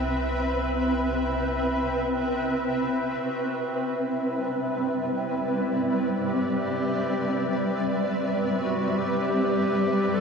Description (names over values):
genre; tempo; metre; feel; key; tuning
ambient; free time; none; none; C lydian; A4 = 439 Hz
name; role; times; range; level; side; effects
granular cloud pad; sustained chords; 0.0-10.2 s; G3 to B5; -24 LUFS; equal; built-in reverb, shimmer reverb
round analog bass; bass; 0.0-3.2 s; C2; -33 LUFS; equal; none
clear clarinet; melody; 3.2-10.2 s; D4 to A4; -32 LUFS; left 2 dB; shimmer reverb, ping-pong delay
room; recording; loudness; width
wet concert hall reverb, RT60 2.2 s; worn, warbling old tape, cassette tape, warbly pitch drift; -24 LUFS; side -5 dB against mid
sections
0.0-3.2 A section; 3.2-10.2 B section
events
fade-in on clarinet 3.2-10.2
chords
0.0 Cmaj7